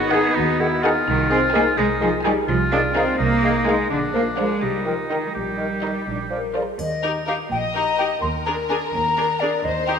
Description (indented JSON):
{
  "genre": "cinematic, playful, whimsical film cue",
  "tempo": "84 BPM (dotted quarters)",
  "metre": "6/8",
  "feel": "straight",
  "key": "Eb major",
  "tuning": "A4 = 440 Hz",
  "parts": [
    { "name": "marimba with soft mallets", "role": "melody", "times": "0.0-6.5 s", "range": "D4 to D5", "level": "-27 LUFS", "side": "left 6 dB", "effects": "none" },
    { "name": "clear oboe", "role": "second line", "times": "0.0-6.4 s", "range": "D4 to G#4", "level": "-24 LUFS", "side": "right 1 dB", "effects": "none" },
    { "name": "dark French horn section", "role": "sustained chords", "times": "0.0-6.7 s", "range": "D4 to Bb4", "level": "-30 LUFS", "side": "left 4 dB", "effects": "none" },
    { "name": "clear chamber cello section", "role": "bass", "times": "0.0-10.0 s", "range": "Eb2 to D4", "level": "-25 LUFS", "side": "right 2 dB", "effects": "none" },
    { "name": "rich chamber double bass section", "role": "bass", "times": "0.0-10.0 s", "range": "G#1 to D#2", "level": "-28 LUFS", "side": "right 4 dB", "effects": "none" },
    { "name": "clear studio violin section", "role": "melody", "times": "0.1-9.9 s", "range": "Bb4 to Ab5", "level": "-32 LUFS", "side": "left 4 dB", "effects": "none" },
    { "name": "hollow concert flute", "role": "second line", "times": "0.1-9.9 s", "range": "D5 to C6", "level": "-27 LUFS", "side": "left 2 dB", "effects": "none" },
    { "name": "mellow clarinet", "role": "second line", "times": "0.1-6.6 s", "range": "Ab4 to Bb4", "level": "-30 LUFS", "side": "left 2 dB", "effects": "none" },
    { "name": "warm chamber violin section", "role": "second line", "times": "0.1-10.0 s", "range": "G#4 to Eb5", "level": "-29 LUFS", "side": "left 5 dB", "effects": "none" },
    { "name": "clear symphonic viola section", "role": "accompaniment", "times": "0.1-10.0 s", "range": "D4 to Ab4", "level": "-30 LUFS", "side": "right 1 dB", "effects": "none" },
    { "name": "mellow bassoon", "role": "accompaniment", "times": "0.1-6.6 s", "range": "D#3 to F3", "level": "-29 LUFS", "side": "right 1 dB", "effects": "none" },
    { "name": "triangle", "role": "percussion", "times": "6.8-7.7 s", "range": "none", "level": "-45 LUFS", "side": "left 5 dB", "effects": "none" }
  ],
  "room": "wet concert hall reverb, RT60 2.4 s",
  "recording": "none",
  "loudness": "-18 LUFS",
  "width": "side -7 dB against mid",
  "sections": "0.0-6.8 A section; 6.8-10.0 B section",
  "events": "none",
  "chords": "0.0 G#m7; 1.1 Ab/C; 2.5 Fm7/C; 3.9 Bb; 4.6 Cm7; 5.3 Eb/Bb; 6.1 Bb; 6.8 Eb; 8.2 Bb7/Eb",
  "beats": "0.36 | 1.07 1.78 | 2.49 3.19 | 3.91 4.62 | 5.34 6.07 | 6.79 7.50 | 8.22 8.93 | 9.64"
}